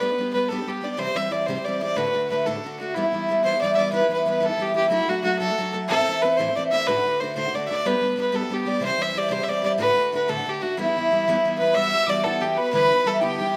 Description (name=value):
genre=celtic folk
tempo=123 BPM (dotted quarters)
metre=6/8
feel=straight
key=E minor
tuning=A4 = 440 Hz
part: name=clear fiddle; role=melody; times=0.0-13.6 s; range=E4 to E5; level=-25 LUFS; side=equal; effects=plate reverb
part: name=picked twelve-string acoustic guitar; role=accompaniment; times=0.0-13.6 s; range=D2 to G4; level=-26 LUFS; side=equal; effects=none
part: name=bright reedy wooden whistle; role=second line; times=11.6-13.6 s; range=G5 to E6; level=-31 LUFS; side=equal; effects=none
room=wet studio reverb, RT60 0.7 s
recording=none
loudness=-23 LUFS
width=mono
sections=0.0-3.9 A section; 3.9-11.7 A section; 11.7-13.6 B section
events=none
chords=0.0 G; 1.0 C; 2.0 D; 2.9 Em; 4.9 D/F#; 5.9 Am; 6.9 D; 7.8 G; 8.8 C; 9.8 D; 10.8 Em; 11.7 Emadd9; 12.7 G6/D